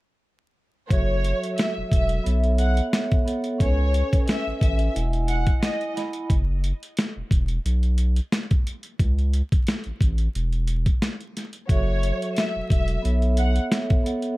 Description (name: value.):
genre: hip hop, boom-bap hip-hop.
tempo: 89 BPM.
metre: 4/4.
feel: swing 54% on 16ths.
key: F# dorian.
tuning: A4 = 439 Hz.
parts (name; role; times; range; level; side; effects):
warm studio violin section; melody; 0.9-5.9, 11.7-13.5 s; C#5 to F#5; -30 LUFS; left 1 dB; tape echo.
vibraphone with soft mallets; accompaniment; 0.9-6.3, 11.7-14.4 s; F#3 to B5; -28 LUFS; right 2 dB; cassette tape.
saturated sub bass; bass; 0.9-13.6 s; E1 to C#2; -22 LUFS; equal; none.
boom bap sampler-style drum kit; drums; 0.9-14.4 s; hi-hat, kick drum, snare drum; -22 LUFS; equal; none.
room: little or no reverb.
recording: dark, warm production, vinyl crackle.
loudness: -20 LUFS.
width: side -20 dB against mid.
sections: 0.9-14.4 A section.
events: none.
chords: 0.9 F#m7; 2.3 B9sus4; 3.6 Amaj7/C#; 5.0 Emaj9; 6.3 Esus2; 7.6 N.C.; 9.0 A/C#; 10.3 N.C.; 11.7 F#m7; 13.0 B9sus4.